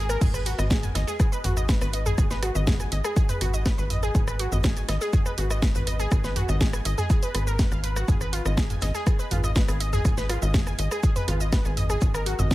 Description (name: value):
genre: melodic techno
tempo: 122 BPM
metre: 4/4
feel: straight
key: G# dorian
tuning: A4 = 440 Hz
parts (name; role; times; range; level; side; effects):
- wide unison pluck; arpeggios; 0.0-12.5 s; E#4 to G#6; -30 LUFS; equal; cassette tape, sidechain pumping, dub echo
- tight sequencer bass; bass; 0.0-12.5 s; G#1; -27 LUFS; equal; sidechain pumping
- house drum kit; drums; 0.1-12.5 s; crash cymbal, hi-hat, rim click, shaker, snare drum, toms; -29 LUFS; right 1 dB; sidechain pumping on hats, sidechain pumping on toms, sidechain pumping on perc, sidechain pumping on cymbals
- electronic kick drum; drums; 0.2-12.5 s; none; -22 LUFS; equal; none
- modern studio drum kit; drums; 0.2-12.5 s; hi-hat, shaker, snare drum; -43 LUFS; equal; none
room: digital ambience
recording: none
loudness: -22 LUFS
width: side -17 dB against mid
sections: 0.0-12.5 A section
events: none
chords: 0.2 G#m; 4.1 B/G#; 8.1 G#m6; 12.0 F#add9/G#